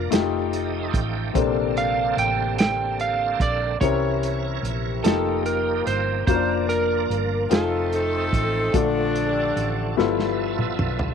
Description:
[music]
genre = slow gospel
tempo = 49 BPM (dotted quarters)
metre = 6/8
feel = straight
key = Bb major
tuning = A4 = 442 Hz
[part]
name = bright saxophone section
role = melody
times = 0.0-0.1, 7.5-10.4 s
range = F3 to A4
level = -25 LUFS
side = left 1 dB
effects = none
[part]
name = electric slide guitar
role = melody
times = 0.0-10.4 s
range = A4 to G5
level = -25 LUFS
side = right 5 dB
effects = none
[part]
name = warm upright piano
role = accompaniment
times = 0.0-11.1 s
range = G2 to Bb4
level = -25 LUFS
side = left 12 dB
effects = none
[part]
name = bright tonewheel organ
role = sustained chords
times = 0.0-11.1 s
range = C3 to G5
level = -31 LUFS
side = right 12 dB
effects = slow rotary speaker, chorus vibrato
[part]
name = hollow-body short-scale fingered electric bass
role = bass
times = 0.0-11.1 s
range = F1 to C2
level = -28 LUFS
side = right 2 dB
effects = none
[part]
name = warm soul drum kit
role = drums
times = 0.1-11.1 s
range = hi-hat, kick drum, snare drum, toms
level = -23 LUFS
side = right 2 dB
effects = none
[sound]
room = moderate spring reverb, RT60 1.7 s, small room ambience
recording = 1960s-style stereo with parts hard left and right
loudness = -20 LUFS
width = side -7 dB against mid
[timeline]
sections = 0.0-11.1 A section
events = tonewheel organ fill 0.1-1.3; drum fill 10.0-11.1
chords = 0.1 F9; 1.3 Bbmaj9; 3.8 C7b9; 5.0 F9sus4; 6.3 Bb/F; 7.5 F7; 8.7 Bbmaj7; 10.0 G13

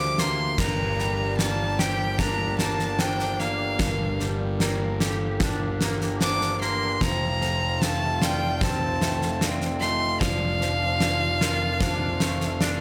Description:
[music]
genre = post-rock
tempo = 75 BPM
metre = 4/4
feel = straight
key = G minor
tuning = A4 = 439 Hz
[part]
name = clear violin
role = melody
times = 0.0-12.8 s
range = F5 to D6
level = -30 LUFS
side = equal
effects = slapback echo
[part]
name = pedal harmonium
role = sustained chords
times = 0.0-12.8 s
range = D3 to F5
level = -39 LUFS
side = equal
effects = none
[part]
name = twangy electric guitar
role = arpeggios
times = 0.0-12.8 s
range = G2 to G4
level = -36 LUFS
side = equal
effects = ensemble chorus, slapback echo
[part]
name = vibraphone with soft mallets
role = arpeggios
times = 0.0-12.8 s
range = A4 to F5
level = -38 LUFS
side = equal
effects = slapback echo
[part]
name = fuzz picked electric bass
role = bass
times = 0.0-12.8 s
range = F1 to D2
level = -31 LUFS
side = equal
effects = overdrive
[part]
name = huge arena drum kit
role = drums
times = 0.2-12.8 s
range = crash cymbal, kick drum, snare drum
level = -29 LUFS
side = equal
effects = none
[sound]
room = light reverb, small room ambience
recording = none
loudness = -25 LUFS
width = mono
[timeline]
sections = 0.6-12.8 A section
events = none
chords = 0.0 Bb6/D; 0.6 Gm; 7.0 F; 10.2 Dm/F

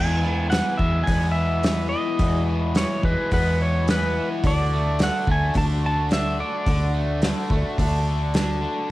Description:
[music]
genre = folk rock and heartland rock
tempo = 107 BPM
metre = 4/4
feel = straight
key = unclear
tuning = A4 = 440 Hz
[part]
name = pedal steel guitar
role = melody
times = 0.0-6.9 s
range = B4 to A5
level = -26 LUFS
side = equal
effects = cassette tape
[part]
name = picked twelve-string acoustic guitar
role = accompaniment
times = 0.0-8.9 s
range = E2 to F#4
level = -28 LUFS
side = left 2 dB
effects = wide subtle chorus, cassette tape
[part]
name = biting overdriven guitar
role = riff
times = 0.0-8.9 s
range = E2 to D4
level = -31 LUFS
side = equal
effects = cassette tape
[part]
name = hollow-body short-scale picked electric bass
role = bass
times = 0.0-8.6 s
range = D2 to E2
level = -23 LUFS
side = equal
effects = none
[part]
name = loose indie drum kit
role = drums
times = 0.5-8.5 s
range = hi-hat, kick drum, snare drum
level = -25 LUFS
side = equal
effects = cassette tape
[sound]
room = light reverb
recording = home recording on cassette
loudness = -20 LUFS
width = side -17 dB against mid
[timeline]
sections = 0.0-8.9 A section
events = none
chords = 0.0 E; 4.4 D

